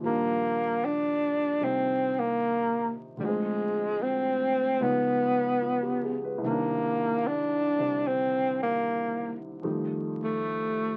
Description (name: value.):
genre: jazz ballad.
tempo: 75 BPM.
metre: 4/4.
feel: swing 69% on 8ths.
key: unclear.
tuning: A4 = 440 Hz.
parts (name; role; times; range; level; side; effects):
warm baby grand piano; accompaniment; 0.0-11.0 s; C2 to Cb5; -35 LUFS; equal; none.
breathy tenor saxophone; melody; 0.1-11.0 s; G3 to D4; -28 LUFS; equal; none.
room: moderate small room reverb, RT60 0.5 s.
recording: very old 78 rpm record, vinyl crackle.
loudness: -28 LUFS.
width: mono.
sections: 0.0-11.0 A section.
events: none.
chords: 0.0 Ebmaj9; 3.2 Dm7b5; 4.8 Db9; 6.4 Cm9; 9.6 F9.